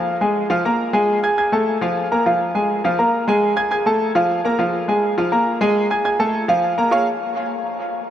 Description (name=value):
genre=latin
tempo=206 BPM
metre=4/4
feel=straight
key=unclear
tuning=A4 = 439 Hz
part: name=clear concert grand piano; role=solo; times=0.0-7.1 s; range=F3 to Ab6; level=-16 LUFS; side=equal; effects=tape echo
room=wet huge ambient reverb, RT60 8.2 s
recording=dreamy mix soaked in reverb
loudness=-16 LUFS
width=side -10 dB against mid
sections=0.0-2.3 A section; 2.3-6.9 B section; 6.9-8.1 C section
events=none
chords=0.5 Fmadd11; 1.1 N.C.; 1.7 F; 2.3 Fm; 2.8 Fmadd11; 3.4 N.C.; 4.0 F; 4.6 Fm; 5.2 Fmadd11; 5.8 N.C.; 6.3 F; 6.9 Bbm7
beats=0.20 0.50 0.79 | 1.08 1.38 1.67 1.96 | 2.25 2.54 2.84 3.13 | 3.42 3.71 4.00 4.30 | 4.59 4.88 5.17 5.46 | 5.75 6.04 6.34 6.63 | 6.92